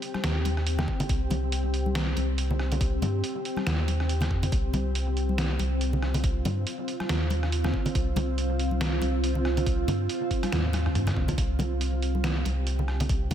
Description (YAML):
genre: deep dubstep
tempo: 140 BPM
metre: 4/4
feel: swing 56% on 16ths, half-time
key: C minor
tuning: A4 = 440 Hz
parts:
  - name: granular cloud pad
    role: sustained chords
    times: 0.0-13.3 s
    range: C4 to G4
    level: -32 LUFS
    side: right 1 dB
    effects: built-in reverb
  - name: trip hop sampler-style drum kit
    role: drums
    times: 0.0-13.3 s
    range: hi-hat, rim click, snare drum, toms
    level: -32 LUFS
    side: right 1 dB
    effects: none
  - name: congas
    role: percussion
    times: 0.1-13.3 s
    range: none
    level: -34 LUFS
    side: left 1 dB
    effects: dub echo
  - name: soft dub sub bass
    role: bass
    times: 0.2-13.3 s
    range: C2 to G2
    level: -27 LUFS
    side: equal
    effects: none
  - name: electronic kick drum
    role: drums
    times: 0.9-13.2 s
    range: none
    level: -28 LUFS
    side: equal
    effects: none
room: light reverb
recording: echo-heavy mix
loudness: -24 LUFS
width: side -10 dB against mid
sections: 0.0-13.3 A section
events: drum fill 10.5-11.4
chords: 0.0 C5